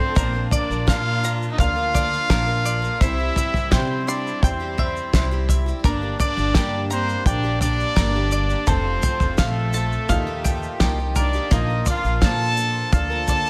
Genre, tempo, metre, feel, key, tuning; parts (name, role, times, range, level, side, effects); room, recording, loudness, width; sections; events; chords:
indie folk with a building arrangement; 85 BPM; 4/4; straight; Bb major; A4 = 440 Hz
clear trumpet; melody; 0.0-13.5 s; A4 to A5; -28 LUFS; equal
warm fiddle; second line; 0.0-13.5 s; A3 to A4; -32 LUFS; equal
picked twelve-string acoustic guitar; accompaniment; 0.0-13.5 s; F2 to Bb4; -34 LUFS; equal
warm upright piano; accompaniment; 0.0-13.5 s; F1 to F5; -37 LUFS; equal
accordion; sustained chords; 0.0-13.5 s; Eb3 to G4; -38 LUFS; equal
bluegrass banjo; arpeggios; 0.0-13.5 s; Bb3 to C6; -33 LUFS; equal
upright bass; bass; 0.2-13.5 s; F1 to C3; -27 LUFS; equal
cloth-damped thuddy drum kit; drums; 0.2-13.4 s; kick drum, snare drum, toms; -23 LUFS; equal
tube shaker; percussion; 0.2-13.5 s; -38 LUFS; equal
little or no reverb; -21 LUFS; mono
0.2-13.5 A section
break 0.0; drum fill 0.0
0.2 Bb; 3.0 C; 5.8 Gm; 8.7 F; 10.1 Ebadd9; 11.5 Bb